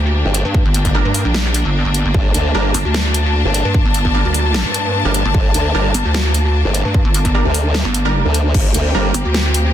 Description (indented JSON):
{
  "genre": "heavy wobble dubstep",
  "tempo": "150 BPM",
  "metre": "4/4",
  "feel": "half-time",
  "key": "G minor",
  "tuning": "A4 = 442 Hz",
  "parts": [
    { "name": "clear studio string section", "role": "sustained chords", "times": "0.0-9.7 s", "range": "Bb3 to A5", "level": "-21 LUFS", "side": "left 2 dB", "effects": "sidechain pumping" },
    { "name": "pulsing pluck wobble bass", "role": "bass", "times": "0.0-9.7 s", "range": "G1 to G2", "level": "-16 LUFS", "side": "equal", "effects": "chorus, overdrive" },
    { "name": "formant-sweep wobble bass", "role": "bass", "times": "0.2-9.1 s", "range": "G1 to D2", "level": "-16 LUFS", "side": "equal", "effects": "chorus, overdrive" },
    { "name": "big-room dance drum kit", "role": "drums", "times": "0.3-9.6 s", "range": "crash cymbal, hi-hat, snare drum", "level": "-21 LUFS", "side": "equal", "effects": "none" },
    { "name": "electronic kick drum", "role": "drums", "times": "0.5-8.6 s", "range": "none", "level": "-16 LUFS", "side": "equal", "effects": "none" },
    { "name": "orchestra-hit-like synth stab", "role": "stabs", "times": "0.9-9.0 s", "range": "G3 to Bb4", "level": "-24 LUFS", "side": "right 3 dB", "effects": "built-in reverb, ping-pong delay" }
  ],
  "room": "little or no reverb",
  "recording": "dense, heavily limited modern master",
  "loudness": "-13 LUFS",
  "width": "side -11 dB against mid",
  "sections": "0.0-9.7 A section",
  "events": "none",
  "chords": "0.0 Gm"
}